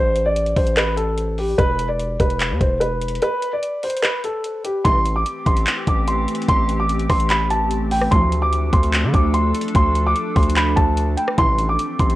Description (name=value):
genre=hip hop, trap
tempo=147 BPM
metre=4/4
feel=half-time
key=A minor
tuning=A4 = 439 Hz
part: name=dark concert grand piano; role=melody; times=0.0-12.2 s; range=G4 to D6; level=-20 LUFS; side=equal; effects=cassette tape, analog delay
part: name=distorted 808-style bass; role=bass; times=0.0-12.2 s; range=E1 to D3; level=-21 LUFS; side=equal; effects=distortion
part: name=trap drum kit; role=drums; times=0.2-12.2 s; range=handclaps, hi-hat, kick drum, rim click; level=-20 LUFS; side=equal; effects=none
part: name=glassy FM pad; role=sustained chords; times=5.2-12.2 s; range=E3 to A4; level=-25 LUFS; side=equal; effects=ensemble chorus, built-in reverb
part: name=dark chamber string section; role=stabs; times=4.9-5.0, 8.1-8.3, 11.4-11.6 s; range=C2 to F3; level=-25 LUFS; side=right 1 dB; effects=none
room=digital ambience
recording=home recording on cassette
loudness=-16 LUFS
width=side -16 dB against mid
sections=0.0-4.9 A section; 4.9-12.2 B section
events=break 3.2-4.9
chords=0.0 Am; 1.6 E5; 4.9 Am7; 8.1 Dm; 11.4 Am7